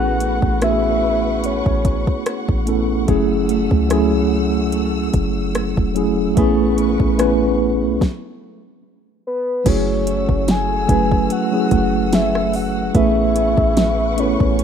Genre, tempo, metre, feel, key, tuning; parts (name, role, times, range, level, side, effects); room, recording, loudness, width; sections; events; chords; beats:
contemporary R&B; 73 BPM; 4/4; swing 54% on 16ths; F# minor; A4 = 441 Hz
soft octave-layered synth lead; melody; 0.0-2.6, 9.3-14.6 s; B4 to G#5; -21 LUFS; left 2 dB; chorus
mellow tine electric piano; accompaniment; 0.0-14.6 s; F#3 to B4; -18 LUFS; right 1 dB; medium stereo tremolo
warm studio string section; sustained chords; 0.0-14.6 s; A3 to E6; -31 LUFS; left 1 dB; sidechain pumping
nylon-string guitar; arpeggios; 0.0-14.6 s; F#3 to B4; -29 LUFS; right 6 dB
warm 808-style bass; bass; 0.0-14.6 s; E1 to C#2; -22 LUFS; equal
smooth R&B drum kit; drums; 0.2-14.6 s; crash cymbal, hi-hat, kick drum, rim click, snare drum; -20 LUFS; equal; overdrive
light reverb; rough home demo mix; -15 LUFS; side -8 dB against mid
0.0-9.7 A section; 9.7-14.6 B section
stop 8.0-9.7
0.0 Amaj9; 3.1 F#m9; 6.4 Amaj9; 9.7 F#m9; 12.9 Amaj9
0.62 1.44 2.26 | 3.08 3.90 4.73 5.55 | 6.37 7.19 8.01 8.84 | 9.66 10.48 11.30 12.12 | 12.95 13.77 14.59